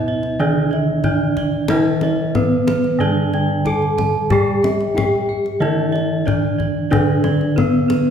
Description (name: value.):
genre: Javanese gamelan.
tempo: 92 BPM.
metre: 4/4.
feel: straight.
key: D pelog barang.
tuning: A4 = 440 Hz.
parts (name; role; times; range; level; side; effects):
gamelan-type bronze metallophone; melody; 0.0-8.1 s; B3+20c to A4-40c; -20 LUFS; right 1 dB; none.
gamelan-type bronze metallophone; accompaniment; 0.0-8.1 s; D3 to B3+20c; -22 LUFS; right 1 dB; none.
gamelan-type bossed gongs; arpeggios; 0.0-7.9 s; B4+20c to A5-40c; -27 LUFS; left 5 dB; none.
gamelan-type bronze metallophone; arpeggios; 0.0-8.1 s; B4+20c to A5-40c; -25 LUFS; right 4 dB; none.
gamelan-type bossed gongs; bass; 0.0-8.1 s; G2+30c to B4+20c; -23 LUFS; left 2 dB; none.
kendang; percussion; 0.2-8.0 s; none; -23 LUFS; left 3 dB; none.
room: wet recital hall reverb, RT60 1.8 s.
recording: recorded in a church or concert hall.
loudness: -15 LUFS.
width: side -8 dB against mid.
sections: 0.0-8.1 A section.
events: none.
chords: none.